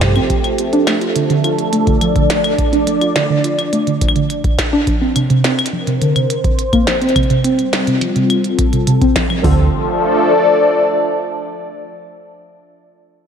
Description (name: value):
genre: IDM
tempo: 105 BPM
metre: 4/4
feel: straight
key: D minor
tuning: A4 = 441 Hz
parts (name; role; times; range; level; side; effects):
- phased analog pad; sustained chords; 0.0-11.7 s; F3 to D5; -16 LUFS; equal; phaser, chorus
- warbly dusty pluck; arpeggios; 0.0-9.7 s; C3 to F4; -17 LUFS; right 1 dB; lush chorus, ping-pong delay
- woody FM bass; bass; 0.0-0.2, 9.4-9.7 s; D2 to G2; -14 LUFS; equal; none
- booming analog drum machine; drums; 0.0-9.6 s; hi-hat, kick drum, toms; -18 LUFS; equal; none
- glitchy drum kit; drums; 0.0-9.4 s; claves, hi-hat, snare drum; -21 LUFS; equal; overdrive, diffuse ambient delay
room: moderate plate reverb, RT60 3.1 s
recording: dreamy mix soaked in reverb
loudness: -12 LUFS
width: side -7 dB against mid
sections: 0.0-9.4 A section; 9.4-11.7 B section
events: filter sweep on analog synth pad 0.0-9.4; filter sweep on synth pluck 0.0-9.4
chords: 0.3 Dm; 4.9 Bbadd9; 7.2 Fadd9; 9.4 Dm